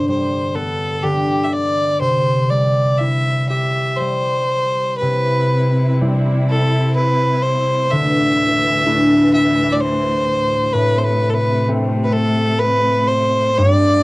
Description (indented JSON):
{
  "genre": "celtic folk, Celtic slow air",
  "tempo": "63 BPM",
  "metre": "3/4",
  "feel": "rubato",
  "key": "C major",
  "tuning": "A4 = 440 Hz",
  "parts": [
    { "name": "rich fiddle", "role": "melody", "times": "0.0-14.0 s", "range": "G4 to E5", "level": "-18 LUFS", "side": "equal", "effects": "none" },
    { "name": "concert harp", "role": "accompaniment", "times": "0.0-14.0 s", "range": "G2 to G4", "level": "-17 LUFS", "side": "equal", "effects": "cassette tape" },
    { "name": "rich studio string section", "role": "sustained chords", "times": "5.0-14.0 s", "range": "D2 to E4", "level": "-23 LUFS", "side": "equal", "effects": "cassette tape" }
  ],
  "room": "wet booth ambience, RT60 0.2 s",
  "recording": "home recording on cassette",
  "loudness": "-14 LUFS",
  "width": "side -20 dB against mid",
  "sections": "0.0-5.0 A section; 5.0-14.0 B section",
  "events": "none",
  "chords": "0.0 G; 2.0 C; 7.9 Dsus2; 10.7 Am",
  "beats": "0.08 1.03 | 2.00 2.99 3.99 | 5.00 6.00 6.96 | 7.91 8.85 9.79 | 10.73 11.66 12.61 | 13.57"
}